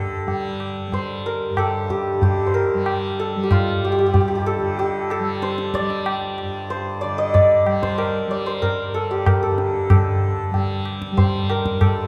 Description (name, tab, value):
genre	indian classical, Hindustani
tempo	94 BPM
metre	4/4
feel	straight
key	G raga darbari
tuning	A4 = 437 Hz
part	santur	melody	0.0-12.1 s	F4 to Eb5	-24 LUFS	equal	none
part	tanpura	drone	0.0-12.1 s	G2 to G3	-29 LUFS	equal	none
part	tabla	percussion	0.3-12.0 s	none	-24 LUFS	equal	none
room	wet concert hall reverb, RT60 2.2 s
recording	recorded in a church or concert hall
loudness	-21 LUFS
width	mono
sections	0.0-9.9 A section; 9.9-12.1 B section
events	none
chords	none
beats	0.28 0.93 1.57 | 2.21 2.86 3.50 4.14 | 4.79 5.43 6.07 6.71 | 7.35 7.99 8.62 9.26 | 9.90 10.53 11.17 11.80